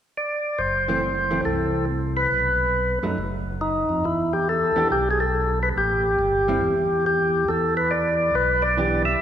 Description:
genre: jazz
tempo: 139 BPM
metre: 4/4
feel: swing 65% on 8ths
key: E minor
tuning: A4 = 443 Hz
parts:
  - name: percussive tonewheel organ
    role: melody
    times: 0.2-9.2 s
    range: D#4 to E5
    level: -21 LUFS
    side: left 1 dB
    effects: slow rotary speaker
  - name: tonewheel organ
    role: bass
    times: 0.6-9.2 s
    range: F#1 to F#2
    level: -27 LUFS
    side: right 1 dB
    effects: overdrive, slow rotary speaker
  - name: vintage hollow-body jazz guitar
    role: accompaniment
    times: 0.9-9.0 s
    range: E3 to G4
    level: -30 LUFS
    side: right 2 dB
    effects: none
room: wet church reverb, RT60 2.8 s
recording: recorded in a church or concert hall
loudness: -20 LUFS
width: side -9 dB against mid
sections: 0.6-4.0 A section; 4.0-9.2 B section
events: none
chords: 0.0 N.C.; 0.6 F#m7b5; 2.3 B; 4.0 Em; 5.8 A7(no3); 7.5 Em7

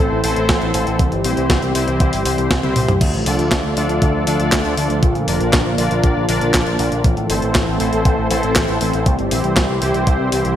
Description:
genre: italo disco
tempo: 119 BPM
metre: 4/4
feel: straight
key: D minor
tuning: A4 = 438 Hz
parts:
  - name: warm analog pad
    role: sustained chords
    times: 0.0-10.6 s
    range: D3 to A4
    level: -21 LUFS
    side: equal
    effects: chorus
  - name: analog synth brass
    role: stabs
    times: 0.0-10.6 s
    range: C4 to D5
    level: -22 LUFS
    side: left 2 dB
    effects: chorus, cassette tape, digital delay
  - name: picked electric bass with an envelope filter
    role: bass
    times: 0.0-10.5 s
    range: F1 to Bb2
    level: -21 LUFS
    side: equal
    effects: digital delay
  - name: clean 12-bit digital drum machine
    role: drums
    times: 0.2-10.5 s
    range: crash cymbal, handclaps, hi-hat, snare drum, toms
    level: -21 LUFS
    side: equal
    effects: none
  - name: electronic kick drum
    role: drums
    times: 0.5-10.2 s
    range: none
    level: -17 LUFS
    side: equal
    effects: none
room: moderate lush hall reverb, RT60 1.8 s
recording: bright 1980s-style digital production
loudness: -14 LUFS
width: side -10 dB against mid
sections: 0.0-3.0 A section; 3.0-10.6 B section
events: drum fill 2.6-3.0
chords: 0.0 Am; 1.0 C; 3.0 Dm; 5.0 Bb; 7.0 Am; 9.1 C

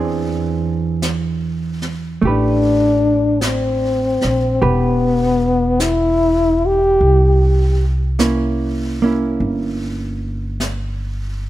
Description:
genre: jazz ballad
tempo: 50 BPM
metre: 4/4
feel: swing 69% on 8ths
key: C major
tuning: A4 = 440 Hz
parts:
  - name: hollow-body jazz guitar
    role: accompaniment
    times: 0.0-11.5 s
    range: E3 to B4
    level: -21 LUFS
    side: right 4 dB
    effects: none
  - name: upright bass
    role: bass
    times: 0.0-11.5 s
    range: E1 to E2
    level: -19 LUFS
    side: equal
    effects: none
  - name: jazz brush drum kit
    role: drums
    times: 1.0-11.5 s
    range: brushed snare drum, hi-hat, snare drum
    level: -28 LUFS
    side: equal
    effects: none
  - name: breathy trombone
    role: melody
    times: 2.3-7.8 s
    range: B3 to G4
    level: -15 LUFS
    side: left 2 dB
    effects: none
room: light reverb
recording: none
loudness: -15 LUFS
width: side -14 dB against mid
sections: 0.0-11.5 A section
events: none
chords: 0.0 E7b13; 2.2 Am9; 7.0 C7b9

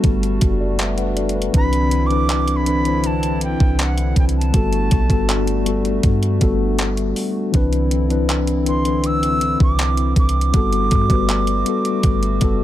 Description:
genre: contemporary R&B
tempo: 80 BPM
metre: 4/4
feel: straight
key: G major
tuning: A4 = 440 Hz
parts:
  - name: mellow tine electric piano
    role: accompaniment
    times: 0.0-12.6 s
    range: E3 to F#5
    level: -21 LUFS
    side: left 4 dB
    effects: medium stereo tremolo
  - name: hollow soft pad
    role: sustained chords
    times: 0.0-12.6 s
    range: D3 to F#4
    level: -26 LUFS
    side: right 2 dB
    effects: chorus
  - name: soft 808-style bass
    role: bass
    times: 0.0-12.6 s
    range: F#1 to G2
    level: -20 LUFS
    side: right 1 dB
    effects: none
  - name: crisp 8-bit digital drum machine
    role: drums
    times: 0.0-12.6 s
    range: handclaps, hi-hat, kick drum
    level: -19 LUFS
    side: equal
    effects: overdrive
  - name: reedy silver concert flute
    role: melody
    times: 1.6-12.6 s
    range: F#5 to E6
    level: -24 LUFS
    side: right 3 dB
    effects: none
room: digital ambience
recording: none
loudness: -15 LUFS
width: side -13 dB against mid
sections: 0.0-12.6 A section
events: none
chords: 0.0 Gmaj9; 1.5 Cmaj9; 4.5 Gmaj9; 7.5 Cmaj9; 10.5 Gmaj9

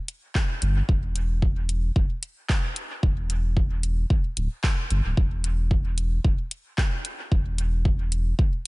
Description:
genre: dub techno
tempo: 112 BPM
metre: 4/4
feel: swing 56% on 16ths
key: E minor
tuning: A4 = 436 Hz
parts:
  - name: deep house drum kit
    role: drums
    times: 0.1-8.2 s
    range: handclaps, hi-hat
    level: -32 LUFS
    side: equal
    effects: dub echo
  - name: electronic kick drum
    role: drums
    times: 0.4-8.5 s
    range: none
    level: -22 LUFS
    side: equal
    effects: none
  - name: warm sub bass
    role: bass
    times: 0.6-8.3 s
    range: D1 to G1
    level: -24 LUFS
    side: equal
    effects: sidechain pumping
room: little or no reverb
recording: nothing above 10.7 kHz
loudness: -22 LUFS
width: side -23 dB against mid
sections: 0.0-8.7 A section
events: none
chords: none

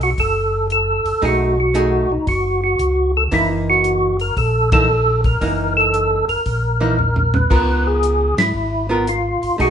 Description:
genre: soul jazz organ trio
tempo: 115 BPM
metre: 4/4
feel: swing 68% on 8ths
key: F# mixolydian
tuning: A4 = 440 Hz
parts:
  - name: percussive tonewheel organ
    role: melody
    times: 0.0-9.7 s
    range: D#4 to B4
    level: -17 LUFS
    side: equal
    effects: slow rotary speaker, chorus vibrato
  - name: mellow tonewheel organ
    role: bass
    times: 0.0-9.7 s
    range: F#1 to G#2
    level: -21 LUFS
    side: left 1 dB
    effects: slow rotary speaker
  - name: warm soul drum kit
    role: drums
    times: 0.0-9.7 s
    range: crash cymbal, hi-hat, kick drum, ride cymbal, snare drum, toms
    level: -22 LUFS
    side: equal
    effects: none
  - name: archtop guitar, miked and amplified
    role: accompaniment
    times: 1.2-9.7 s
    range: E3 to A#4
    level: -21 LUFS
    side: right 2 dB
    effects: none
room: wet large studio reverb, RT60 0.9 s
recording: band playing live in one room, nothing above 11.0 kHz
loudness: -15 LUFS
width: side -8 dB against mid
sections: 0.0-9.7 A section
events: band accent 4.6, 8.3; drum fill 7.0-7.5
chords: 0.0 B13; 3.3 F#6; 7.5 C#6

